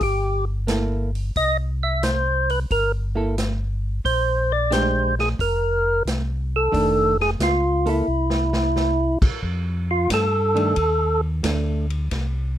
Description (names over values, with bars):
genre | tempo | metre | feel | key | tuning
soul jazz organ trio | 89 BPM | 4/4 | swing 69% on 8ths | unclear | A4 = 441 Hz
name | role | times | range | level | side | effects
percussive tonewheel organ | melody | 0.0-11.2 s | E4 to E5 | -20 LUFS | equal | slow rotary speaker, overdrive
mellow tonewheel organ | bass | 0.0-12.6 s | F1 to G2 | -24 LUFS | equal | chorus vibrato, slow rotary speaker
vintage drum kit | drums | 0.0-12.3 s | crash cymbal, hi-hat, kick drum, ride cymbal, snare drum | -25 LUFS | equal | none
hollow-body jazz guitar | accompaniment | 0.7-11.9 s | Eb3 to A4 | -24 LUFS | right 3 dB | none
room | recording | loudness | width
little or no reverb | rough home demo mix | -19 LUFS | side -11 dB against mid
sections
0.0-9.4 A section; 9.4-12.6 B section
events
drum fill 8.1-8.7; tonewheel organ solo 9.4-12.6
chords
0.0 C6; 4.0 Bb13; 6.7 F6; 8.1 C; 9.4 F13